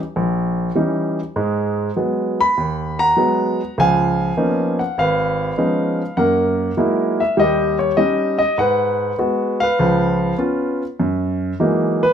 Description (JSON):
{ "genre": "solo jazz", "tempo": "100 BPM", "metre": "4/4", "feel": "swing 68% on 8ths", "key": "unclear", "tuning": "A4 = 440 Hz", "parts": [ { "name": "warm grand piano", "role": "solo", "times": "0.2-12.1 s", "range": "G#1 to B5", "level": "-16 LUFS", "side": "equal", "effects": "none" } ], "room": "moderate large studio reverb, RT60 0.9 s", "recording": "minimal, uncompressed stereo recording", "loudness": "-16 LUFS", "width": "side -8 dB against mid", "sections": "0.0-11.0 A section; 11.0-12.1 B section", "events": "grand piano solo 11.0-12.1", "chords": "0.0 D#7b9; 1.4 G#m7; 3.8 C#13; 6.2 F#13; 7.4 D#7; 8.6 G#m7; 9.8 C#7; 11.0 F#13" }